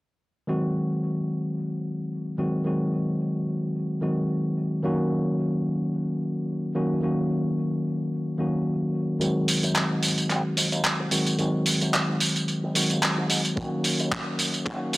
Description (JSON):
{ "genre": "nu-disco, nu disco", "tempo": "110 BPM", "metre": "4/4", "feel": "swing 56% on 16ths", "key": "Ab mixolydian", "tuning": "A4 = 440 Hz", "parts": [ { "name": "tine electric piano", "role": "accompaniment", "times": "0.5-15.0 s", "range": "Eb3 to Gb4", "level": "-25 LUFS", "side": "equal", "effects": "sidechain pumping, low-pass filter, analog delay" }, { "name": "fingered electric bass with an envelope filter", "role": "bass", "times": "9.2-15.0 s", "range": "Gb1 to Ab2", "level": "-34 LUFS", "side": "equal", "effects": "high-pass filter" }, { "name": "dusty soul sampler-style drum kit", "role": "drums", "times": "9.2-15.0 s", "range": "handclaps, hi-hat, tambourine", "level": "-24 LUFS", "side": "right 1 dB", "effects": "low-pass filter on hats, low-pass filter on perc, low-pass filter on snare, low-pass filter on room" }, { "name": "kick drum", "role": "drums", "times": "13.6-14.8 s", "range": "none", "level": "-33 LUFS", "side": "equal", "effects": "none" } ], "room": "light reverb, small room ambience", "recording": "dry, gritty hardware recording, cassette tape, high-pass filter", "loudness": "-23 LUFS", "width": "side -19 dB against mid", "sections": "0.5-9.2 A section; 9.2-15.0 B section", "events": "build-up 9.2-15.0; filter sweep on tine electric piano 9.2-15.0", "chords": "0.5 Ab7; 4.8 Gb6; 9.2 Ab7; 13.6 Gb6" }